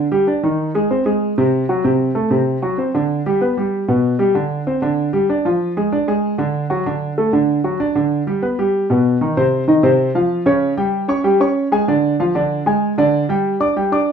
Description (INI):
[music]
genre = latin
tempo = 191 BPM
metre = 4/4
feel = straight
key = unclear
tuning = A4 = 440 Hz
[part]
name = clear concert grand piano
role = solo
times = 0.0-14.1 s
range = B2 to D6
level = -15 LUFS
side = right 1 dB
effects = none
[sound]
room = light reverb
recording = rough home demo mix, studio reverb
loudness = -15 LUFS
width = side -7 dB against mid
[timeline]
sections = 0.0-9.4 A section; 9.4-14.1 B section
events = none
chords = 0.0 Cmadd9 (rootless); 0.6 Ab; 1.8 D7; 3.1 G; 4.4 Csus2; 5.6 Ddim; 6.9 D; 8.1 G; 9.4 F5; 10.6 Db5; 11.9 Ddim; 13.1 G5